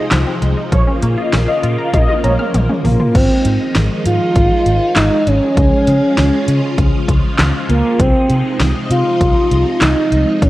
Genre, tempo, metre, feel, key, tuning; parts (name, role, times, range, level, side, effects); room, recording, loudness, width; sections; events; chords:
synth-pop; 99 BPM; 4/4; straight; Ab major; A4 = 441 Hz
phased string machine; sustained chords; 0.0-10.5 s; C3 to F4; -20 LUFS; equal; ensemble chorus, phaser
analog pluck; arpeggios; 0.0-3.1 s; F3 to F6; -24 LUFS; left 1 dB; chorus, analog delay
vintage muted fingered electric bass; bass; 0.1-10.5 s; Ab1 to Db3; -16 LUFS; equal
deep house drum kit; drums; 0.1-10.5 s; crash cymbal, handclaps, hi-hat, kick drum, snare drum, toms; -17 LUFS; equal; overdrive
mellow synth brass; second line; 0.7-2.3 s; Db5 to F5; -21 LUFS; left 1 dB; chorus, analog delay
expressive synth lead; melody; 2.8-10.5 s; Bb3 to F4; -15 LUFS; equal; chorus, analog delay
light reverb, digital ambience; worn, warbling old tape, cassette tape, warbly pitch drift; -12 LUFS; side -16 dB against mid
0.0-3.1 A section; 3.1-10.5 B section
drum fill 1.9-3.1
0.0 Ab6/C; 0.7 Bbm; 3.1 Ab6; 5.6 Db; 8.0 Ab6/C